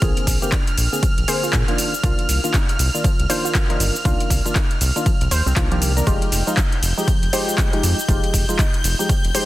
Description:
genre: deep house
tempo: 119 BPM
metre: 4/4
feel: swing 60% on 16ths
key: F dorian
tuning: A4 = 440 Hz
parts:
  - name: warbly dusty pluck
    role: arpeggios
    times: 0.0-9.5 s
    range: F3 to C5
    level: -29 LUFS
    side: right 1 dB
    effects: chorus, phaser, sidechain pumping, tape echo
  - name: percussive organ stab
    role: stabs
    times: 0.0-9.5 s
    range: D3 to Bb4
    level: -25 LUFS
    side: equal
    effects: analog chorus, sidechain pumping, tape echo
  - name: round analog bass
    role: bass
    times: 0.0-9.3 s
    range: F1 to Bb2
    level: -20 LUFS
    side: equal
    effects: sidechain pumping
  - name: deep house drum kit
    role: drums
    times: 0.0-9.5 s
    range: cabasa, handclaps, hi-hat, ride cymbal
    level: -24 LUFS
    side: equal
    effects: overdrive
  - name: electronic kick drum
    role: drums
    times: 0.0-9.2 s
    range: none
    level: -20 LUFS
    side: equal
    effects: overdrive
  - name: analog string pad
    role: texture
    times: 0.0-9.5 s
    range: F6 to G6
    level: -28 LUFS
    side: equal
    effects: ensemble chorus, sidechain pumping
room: light reverb, digital ambience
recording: dense, heavily limited modern master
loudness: -16 LUFS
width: side -16 dB against mid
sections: 0.0-9.5 A section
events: none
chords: 0.0 Bb9; 1.8 Cm11; 6.1 Fm9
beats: | 0.02 0.52 1.03 1.53 | 2.04 2.54 3.04 3.55 | 4.05 4.56 5.06 5.57 | 6.07 6.57 7.08 7.58 | 8.09 8.59 9.09

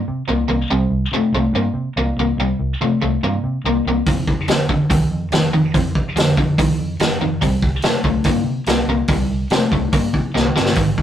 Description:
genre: blues rock power trio and southern rock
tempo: 143 BPM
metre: 4/4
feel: straight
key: C minor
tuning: A4 = 440 Hz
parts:
  - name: biting overdriven guitar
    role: riff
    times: 0.0-11.0 s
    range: F2 to Bb3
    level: -19 LUFS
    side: left 1 dB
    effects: none
  - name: vintage muted picked electric bass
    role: bass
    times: 0.1-11.0 s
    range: F1 to C3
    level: -23 LUFS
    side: right 1 dB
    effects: none
  - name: vintage drum kit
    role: drums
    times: 4.1-11.0 s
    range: hi-hat, kick drum, snare drum, toms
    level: -18 LUFS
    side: equal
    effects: none
room: moderate studio reverb, RT60 0.5 s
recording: rough rehearsal-room recording, tube saturation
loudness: -16 LUFS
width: side -10 dB against mid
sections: 0.0-11.0 A section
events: drum fill 10.3-10.8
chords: 0.0 C5; 4.1 F5; 7.4 C5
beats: 0.28 | 0.70 1.12 1.54 1.96 | 2.38 2.80 3.22 3.64 | 4.06 4.48 4.90 5.32 | 5.74 6.16 6.58 7.00 | 7.42 7.84 8.26 8.67 | 9.09 9.51 9.93 10.35 | 10.77

